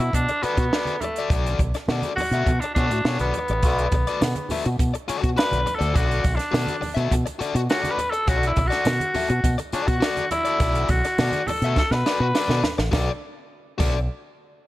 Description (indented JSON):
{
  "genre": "funk",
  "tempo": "103 BPM",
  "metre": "4/4",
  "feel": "straight",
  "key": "B minor",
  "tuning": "A4 = 440 Hz",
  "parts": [
    { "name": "breathy tenor saxophone", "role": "melody", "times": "0.0-12.8 s", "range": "A3 to B4", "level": "-25 LUFS", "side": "equal", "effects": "none" },
    { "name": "biting overdriven guitar", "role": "accompaniment", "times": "0.0-14.0 s", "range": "F#4 to E5", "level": "-28 LUFS", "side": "left 5 dB", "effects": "none" },
    { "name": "fingered electric bass with an envelope filter", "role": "bass", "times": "0.0-14.1 s", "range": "A1 to B2", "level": "-24 LUFS", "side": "equal", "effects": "none" },
    { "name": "compact cocktail drum kit", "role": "drums", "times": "0.1-13.9 s", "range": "crash cymbal, hi-hat, kick drum, snare drum", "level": "-24 LUFS", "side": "right 1 dB", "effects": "none" },
    { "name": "congas", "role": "percussion", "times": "0.1-14.1 s", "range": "none", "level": "-34 LUFS", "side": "right 3 dB", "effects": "none" },
    { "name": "tambourine", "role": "percussion", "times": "3.6-14.1 s", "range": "none", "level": "-43 LUFS", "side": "left 4 dB", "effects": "none" }
  ],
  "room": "light reverb, small room reverb",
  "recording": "none",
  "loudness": "-20 LUFS",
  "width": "side -16 dB against mid",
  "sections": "0.0-12.9 A section; 12.9-14.7 B section",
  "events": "tenor saxophone solo 0.0-12.9; drum fill 11.8-12.9",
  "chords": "0.0 Bm7",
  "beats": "0.14 0.72 | 1.30 1.89 2.47 3.05 | 3.63 4.21 4.80 5.38 | 5.96 6.54 7.12 7.70 | 8.28 8.86 9.44 10.02 | 10.60 11.18 11.76 12.34 | 12.92 13.51"
}